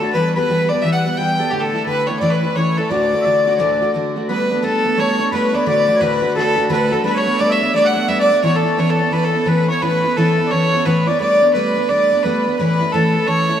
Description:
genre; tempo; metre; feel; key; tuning
celtic folk; 174 BPM; 4/4; swing 63% on 8ths; unclear; A4 = 440 Hz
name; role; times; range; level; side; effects
clear fiddle; melody; 0.0-13.6 s; G4 to G5; -17 LUFS; equal; slapback echo
accordion; second line; 0.0-13.6 s; G4 to G5; -22 LUFS; left 3 dB; none
picked steel-string acoustic guitar; accompaniment; 0.0-13.6 s; D2 to G4; -19 LUFS; equal; none
room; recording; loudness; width
wet plate reverb, RT60 3.6 s; heard from further back in the room; -14 LUFS; side -9 dB against mid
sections
0.0-4.3 A section; 4.3-13.6 B section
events
none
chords
0.1 Em; 1.5 Asus4; 2.2 A; 2.9 D; 4.3 Gadd9; 5.7 D; 7.0 Gadd9; 8.4 Aadd9; 11.2 Gadd9; 12.6 A

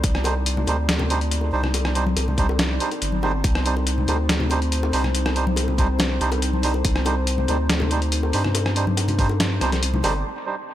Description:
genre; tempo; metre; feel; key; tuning
deep dubstep; 141 BPM; 4/4; half-time; C minor; A4 = 440 Hz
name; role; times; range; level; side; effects
dark analog pad; sustained chords; 0.0-10.7 s; C4 to D5; -29 LUFS; left 2 dB; wide subtle chorus
saturated sub bass; bass; 0.0-10.2 s; G1 to G2; -23 LUFS; equal; none
electronic kick drum; drums; 0.0-9.3 s; none; -21 LUFS; equal; none
trip hop sampler-style drum kit; drums; 0.0-10.1 s; hi-hat, rim click, snare drum; -25 LUFS; left 1 dB; none
melodica; stabs; 0.2-10.6 s; G3 to C5; -27 LUFS; right 4 dB; low-pass filter, dub echo
bongos and congas; percussion; 0.2-10.1 s; none; -30 LUFS; left 3 dB; dub echo
room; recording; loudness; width
light reverb, digital ambience; none; -19 LUFS; side -12 dB against mid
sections
0.0-10.2 A section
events
none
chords
0.0 Cmadd9

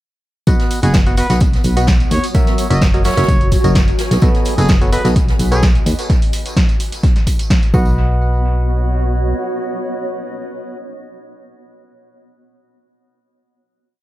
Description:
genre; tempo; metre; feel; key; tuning
piano house; 128 BPM; 4/4; straight; B major; A4 = 437 Hz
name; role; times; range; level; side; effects
percussive organ stab; riff; 0.5-10.8 s; F#3 to F#5; -22 LUFS; equal; chorus, cassette tape, sidechain pumping, dub echo
solid FM bass; bass; 0.5-9.3 s; F#1 to D#2; -15 LUFS; equal; sidechain pumping
electronic kick drum; drums; 0.5-7.8 s; none; -14 LUFS; equal; none
punchy analog drum machine; drums; 0.5-7.7 s; hi-hat, snare drum, tambourine; -23 LUFS; equal; dub echo
tambourine and snare drum; drums; 0.5-6.0 s; none; -31 LUFS; right 2 dB; high-pass filter on snare, sidechain pumping on perc, high-pass filter on perc, high-pass filter on room, dub echo
tambourine; percussion; 0.5-7.9 s; none; -37 LUFS; right 4 dB; none
granular cloud pad; texture; 1.1-11.2 s; B3 to D#6; -25 LUFS; right 1 dB; built-in reverb, sidechain pumping
warm trumpet; melody; 0.8-5.6 s; G#4 to D#5; -25 LUFS; equal; dub echo
room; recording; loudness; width
light reverb, small room ambience; echo-heavy mix; -12 LUFS; side -16 dB against mid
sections
0.5-8.0 drop; 8.0-11.7 final chord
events
drop 0.5-8.0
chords
0.5 B; 2.3 F#7; 4.0 B7; 6.1 N.C.; 7.7 B

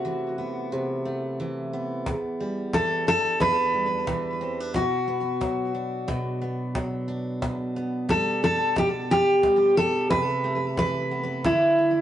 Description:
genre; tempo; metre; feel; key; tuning
acoustic pop; 90 BPM; 4/4; swing 60% on 16ths; unclear; A4 = 444 Hz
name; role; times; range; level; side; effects
picked steel-string acoustic guitar; melody; 0.0-12.0 s; E4 to B4; -22 LUFS; equal; digital delay
picked steel-string acoustic guitar; accompaniment; 0.0-12.0 s; E2 to D4; -30 LUFS; right 1 dB; none
cajon; drums; 2.1-11.6 s; none; -33 LUFS; equal; none
room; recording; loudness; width
wet studio reverb, RT60 0.6 s; rough rehearsal-room recording, warm saturation, nothing above 10.9 kHz; -22 LUFS; side -11 dB against mid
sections
0.0-12.0 A section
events
none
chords
0.0 Amadd9/C; 2.1 Em7; 4.7 Bm; 10.1 Amadd9/C; 11.4 Dsus2

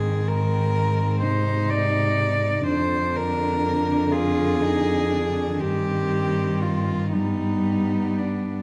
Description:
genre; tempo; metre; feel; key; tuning
classical, lyrical piece for cello ensemble; 36-43 BPM (dotted quarters); 6/8; rubato; unclear; A4 = 440 Hz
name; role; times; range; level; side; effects
warm cello; melody; 0.0-8.6 s; D4 to D5; -28 LUFS; equal; none
rich cello; second line; 0.0-8.6 s; B3 to F4; -32 LUFS; equal; none
warm cello; accompaniment; 0.0-8.6 s; C3 to G3; -29 LUFS; equal; none
dark cello; bass; 0.0-8.6 s; F2 to Ab2; -28 LUFS; equal; none
room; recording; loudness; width
moderate recital hall reverb, RT60 1.5 s; dark, warm production; -23 LUFS; mono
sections
0.0-8.6 A section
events
none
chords
0.0 Ab; 2.7 Ddim/F; 5.6 Cm/G; 7.1 G

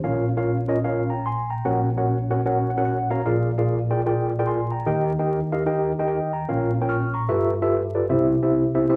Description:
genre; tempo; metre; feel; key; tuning
gospel; 149 BPM; 4/4; swing 62% on 8ths; unclear; A4 = 440 Hz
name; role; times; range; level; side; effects
mellow tine electric piano; solo; 0.0-9.0 s; Bb1 to F6; -23 LUFS; equal; none
room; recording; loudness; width
wet large studio reverb, RT60 0.9 s; vinyl crackle; -23 LUFS; mono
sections
0.0-9.0 A section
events
tine electric piano fill 2.4-3.3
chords
0.0 Bbm; 1.6 Gb/Bb; 3.3 Bb7; 4.9 Eb; 6.5 Bbm; 7.3 G13; 8.1 C

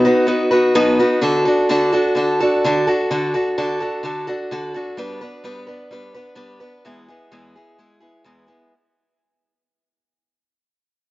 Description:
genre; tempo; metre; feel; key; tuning
rock; 128 BPM; 4/4; straight; E major; A4 = 439 Hz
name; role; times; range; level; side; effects
picked steel-string acoustic guitar; solo; 0.0-8.7 s; E2 to B4; -16 LUFS; equal; none
room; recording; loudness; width
moderate plate reverb, RT60 2.8 s; worn, warbling old tape, cassette tape, warbly pitch drift, nothing above 7.8 kHz; -15 LUFS; side -18 dB against mid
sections
0.0-8.7 A section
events
fade-out 0.0-8.7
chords
0.0 B; 1.2 D; 5.0 G; 6.9 E

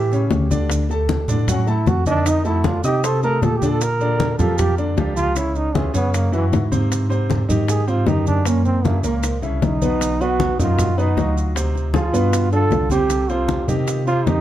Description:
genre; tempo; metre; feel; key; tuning
Afro-Cuban jazz; 155 BPM; 4/4; straight; unclear; A4 = 440 Hz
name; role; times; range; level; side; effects
warm trombone; second line; 0.0-14.4 s; E3 to Bb4; -23 LUFS; right 3 dB; analog delay
clear upright piano; accompaniment; 0.0-14.4 s; Bb2 to Eb6; -23 LUFS; equal; none
tine electric piano; bass; 0.0-14.4 s; Cb2 to C3; -20 LUFS; equal; medium tremolo
bongos; percussion; 0.1-14.4 s; none; -26 LUFS; left 6 dB; none
congas; percussion; 0.1-14.4 s; none; -25 LUFS; left 2 dB; none
maracas; percussion; 0.1-14.4 s; none; -34 LUFS; right 7 dB; none
room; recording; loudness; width
light reverb; dark, warm production; -16 LUFS; side -12 dB against mid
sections
0.0-3.8 A section; 3.8-14.4 A section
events
trombone solo 0.0-14.4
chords
0.0 A7; 0.7 D; 2.3 F6; 3.8 Bb6; 5.4 Dbm; 6.1 Gbsus2; 6.9 Abmaj7; 8.5 Gb7; 10.0 B; 11.6 Dm7b5; 12.3 G7; 13.1 Cm

